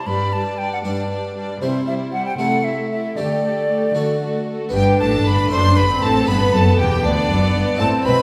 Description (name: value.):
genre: classical, baroque-style concerto movement with solo episodes.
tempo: 78 BPM (dotted quarters).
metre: 6/8.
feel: straight.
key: G major.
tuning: A4 = 442 Hz.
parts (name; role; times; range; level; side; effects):
clear chamber violin section; melody; 0.0-8.2 s; A4 to C6; -31 LUFS; equal; none.
silver concert flute; melody; 0.0-8.2 s; C5 to C6; -25 LUFS; equal; none.
rich chamber violin section; second line; 0.0-8.2 s; D4 to C5; -29 LUFS; equal; none.
rich chamber viola section; accompaniment; 0.0-8.2 s; G3 to D4; -26 LUFS; equal; none.
harpsichord; accompaniment; 0.1-8.2 s; D2 to D5; -28 LUFS; equal; none.
rich chamber cello section; bass; 0.1-8.1 s; D2 to D3; -25 LUFS; equal; none.
rich chamber double bass section; bass; 4.7-8.1 s; E1 to D2; -23 LUFS; equal; none.
room: wet recital hall reverb, RT60 1.5 s.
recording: heard from further back in the room.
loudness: -19 LUFS.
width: mono.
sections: 0.0-4.7 A section; 4.7-8.2 B section.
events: none.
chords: 0.1 G5; 1.6 C; 2.4 Am/C; 3.2 Dsus4; 4.0 D; 4.7 G; 5.5 D/F#; 6.3 G.